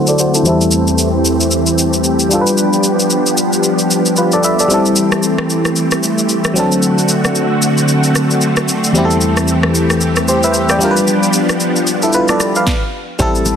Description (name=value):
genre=amapiano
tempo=113 BPM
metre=4/4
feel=swing 58% on 16ths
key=unclear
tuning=A4 = 440 Hz
part: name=barking FM electric piano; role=accompaniment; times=0.0-13.6 s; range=E2 to G5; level=-14 LUFS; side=left 1 dB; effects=chorus, low-pass filter
part: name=string machine, violins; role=sustained chords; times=0.0-13.6 s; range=D3 to G4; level=-15 LUFS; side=right 1 dB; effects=ensemble chorus, low-pass filter
part: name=afro-pop drum kit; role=drums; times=0.1-13.6 s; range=kick drum, rim click, shaker, snare drum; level=-18 LUFS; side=equal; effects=soft clipping on snare
part: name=deep log drum bass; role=bass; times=13.2-13.6 s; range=A1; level=-18 LUFS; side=equal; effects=none
part: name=congas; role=percussion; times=13.5-13.6 s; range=none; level=-22 LUFS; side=right 1 dB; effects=none
room=light reverb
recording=dense, heavily limited modern master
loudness=-11 LUFS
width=side -7 dB against mid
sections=0.0-13.2 A section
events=filter sweep 0.0-13.2; stop 12.7-13.2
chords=0.5 C6/E; 2.3 G7; 4.7 Am7; 6.6 D7; 8.9 C6/E; 10.8 G7